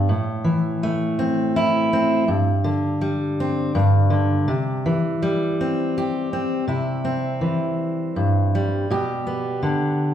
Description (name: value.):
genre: folk.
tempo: 82 BPM.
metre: 3/4.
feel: straight.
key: C major.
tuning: A4 = 440 Hz.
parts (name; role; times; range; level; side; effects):
fingerpicked steel-string acoustic guitar; solo; 0.0-10.1 s; G2 to G4; -19 LUFS; equal; none.
room: wet large studio reverb, RT60 1.2 s.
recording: band playing live in one room.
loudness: -19 LUFS.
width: side -10 dB against mid.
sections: 0.0-6.7 A section; 6.7-10.1 B section.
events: none.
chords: 0.1 Am; 2.3 Gsus4; 3.7 G5; 4.5 C; 8.9 G/B.